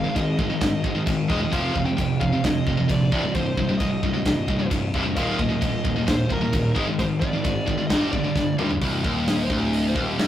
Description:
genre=heavy metal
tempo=132 BPM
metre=4/4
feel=straight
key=C minor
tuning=A4 = 439 Hz
part: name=dark smooth lead guitar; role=melody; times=0.0-10.3 s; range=G4 to G5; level=-30 LUFS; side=equal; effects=overdrive
part: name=high-gain distorted guitar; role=riff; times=0.0-10.3 s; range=C2 to Ab3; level=-23 LUFS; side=equal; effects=distortion
part: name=fuzz picked electric bass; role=bass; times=0.0-10.3 s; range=C1 to D2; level=-29 LUFS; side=equal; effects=overdrive
part: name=modern studio drum kit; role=drums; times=0.2-10.3 s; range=crash cymbal, hi-hat, kick drum, snare drum, toms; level=-26 LUFS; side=equal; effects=none
room=moderate studio reverb, RT60 0.6 s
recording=rough rehearsal-room recording, tube saturation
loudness=-20 LUFS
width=side -11 dB against mid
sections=0.0-8.8 A section; 8.8-10.3 B section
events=half time 0.0-8.8; drum fill 8.4-8.8; lead electric guitar solo 8.8-10.3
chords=0.0 Ab5; 1.5 F5; 3.1 Cm; 5.2 Eb5; 6.8 Ab5; 7.9 G5; 8.8 Cm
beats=0.16 0.62 1.07 | 1.53 1.98 2.44 2.89 | 3.35 3.80 4.26 4.71 | 5.17 5.62 6.08 6.53 | 6.99 7.44 7.90 8.35 | 8.81 9.27 9.72 10.18

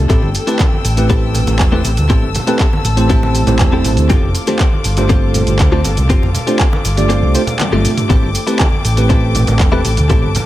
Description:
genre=nu-disco, nu disco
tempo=120 BPM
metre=4/4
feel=straight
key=A minor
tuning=A4 = 440 Hz
part: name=bell-like tine electric piano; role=accompaniment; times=0.0-9.8 s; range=A3 to E5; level=-19 LUFS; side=right 2 dB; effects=lush chorus, sidechain pumping, analog delay
part: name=dark studio string section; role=sustained chords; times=0.0-10.5 s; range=F4 to E6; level=-23 LUFS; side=left 3 dB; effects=sidechain pumping
part: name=overdriven fingered electric bass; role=bass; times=0.0-10.3 s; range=E1 to D2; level=-15 LUFS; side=equal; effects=none
part: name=direct-recorded clean electric guitar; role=riff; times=0.1-10.3 s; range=C4 to C5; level=-21 LUFS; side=left 3 dB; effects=analog chorus, analog delay
part: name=electronic kick drum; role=drums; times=0.1-10.2 s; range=none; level=-14 LUFS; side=equal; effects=small room ambience
part: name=pop drum kit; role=drums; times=0.1-10.5 s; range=handclaps, hi-hat, shaker, toms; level=-22 LUFS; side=equal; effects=small room ambience, analog delay
part: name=congas and cabasa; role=percussion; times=0.1-10.5 s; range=none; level=-24 LUFS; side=right 1 dB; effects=none
room=light reverb, digital ambience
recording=echo-heavy mix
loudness=-11 LUFS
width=side -14 dB against mid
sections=0.0-10.5 A section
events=kick drops out 7.1-8.1; drum fill 7.6-8.1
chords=0.1 Am7; 4.1 G9sus4; 8.1 Am7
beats=| 0.10 0.60 1.10 1.60 | 2.10 2.60 3.10 3.60 | 4.10 4.60 5.10 5.60 | 6.10 6.60 7.10 7.60 | 8.10 8.60 9.10 9.60 | 10.10

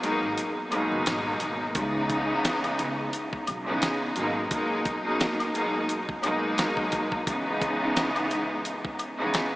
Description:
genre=hip hop, boom-bap hip-hop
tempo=87 BPM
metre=4/4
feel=swing 55% on 16ths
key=C# minor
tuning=A4 = 440 Hz
part: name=clear studio string section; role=accompaniment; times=0.0-9.6 s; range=B2 to D#4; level=-26 LUFS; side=equal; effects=high-pass filter, low-pass filter
part: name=dusty soul sampler-style drum kit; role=drums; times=0.0-9.5 s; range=hi-hat, kick drum, snare drum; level=-33 LUFS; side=equal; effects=none
part: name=maracas and woodblock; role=percussion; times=0.0-9.5 s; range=none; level=-39 LUFS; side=left 2 dB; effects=none
part: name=upright bass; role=bass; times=0.2-4.4 s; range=F#1 to C#2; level=-38 LUFS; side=equal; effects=none
room=wet huge ambient reverb, RT60 7.8 s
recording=dreamy mix soaked in reverb, small speaker sound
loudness=-25 LUFS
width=side -18 dB against mid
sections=0.0-9.6 A section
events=break 0.0-1.8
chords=0.0 G#m9; 1.8 C#m9; 4.2 G#m9; 7.3 C#m9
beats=0.37 1.06 | 1.75 2.44 3.13 3.82 | 4.51 5.20 5.89 6.58 | 7.27 7.96 8.65 9.34

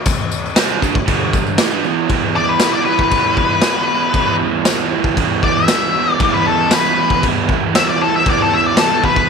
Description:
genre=garage rock duo or trio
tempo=117 BPM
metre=4/4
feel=straight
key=E minor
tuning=A4 = 440 Hz
part: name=raw garage drum kit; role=drums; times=0.1-9.3 s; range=crash cymbal, kick drum, snare drum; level=-17 LUFS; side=left 2 dB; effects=none
part: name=tambourine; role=percussion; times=0.1-8.9 s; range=none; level=-29 LUFS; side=left 18 dB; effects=none
part: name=crunchy overdriven guitar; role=riff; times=0.6-9.3 s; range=G2 to E4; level=-18 LUFS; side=right 13 dB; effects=none
part: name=octave-fuzz lead guitar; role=melody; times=2.4-9.3 s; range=A4 to E5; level=-16 LUFS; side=left 6 dB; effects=distortion
room=light reverb, small room ambience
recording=1960s-style stereo with parts hard left and right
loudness=-13 LUFS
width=side -5 dB against mid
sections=0.0-2.1 A section; 2.1-9.3 B section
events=lead electric guitar solo 2.1-9.3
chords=0.0 N.C.; 1.1 G5; 1.6 A5; 2.1 Em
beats=| 0.06 0.57 1.08 1.59 | 2.10 2.61 3.12 3.63 | 4.15 4.66 5.17 5.69 | 6.20 6.72 7.24 7.75 | 8.27 8.78

